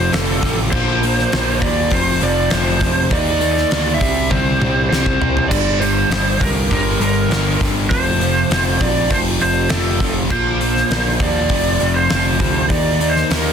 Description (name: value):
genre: hard rock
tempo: 100 BPM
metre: 4/4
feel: straight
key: unclear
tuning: A4 = 444 Hz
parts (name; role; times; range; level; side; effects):
- lead guitar through a small cranked amp; melody; 0.0-13.5 s; A4 to E5; -19 LUFS; right 2 dB; overdrive, plate reverb, tape echo
- overdriven semi-hollow guitar; riff; 0.0-13.5 s; F2 to Eb4; -24 LUFS; left 12 dB; phaser
- overdriven semi-hollow guitar; riff; 0.0-13.5 s; F2 to Eb4; -24 LUFS; right 10 dB; none
- sludgy distorted guitar; riff; 0.0-13.5 s; F2 to Eb4; -25 LUFS; equal; overdrive
- growling picked electric bass; bass; 0.0-13.5 s; F1 to Eb2; -21 LUFS; equal; overdrive
- gated 80s drum kit; drums; 0.1-13.4 s; crash cymbal, hi-hat, kick drum, snare drum, toms; -20 LUFS; left 1 dB; none
room: light reverb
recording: dense, heavily limited modern master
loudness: -14 LUFS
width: side -7 dB against mid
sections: 0.0-13.5 A section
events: drum fill 4.3-5.5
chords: 0.0 F; 0.7 Bb5; 1.9 F5; 3.1 Eb5; 4.0 C5; 5.5 Gm; 7.9 F5; 10.3 Bb5; 11.5 F5; 12.7 Eb5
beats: 0.13 | 0.72 1.32 1.92 2.52 | 3.12 3.71 4.31 4.91 | 5.51 6.11 6.71 7.31 | 7.91 8.51 9.10 9.70 | 10.30 10.90 11.50 12.10 | 12.70 13.30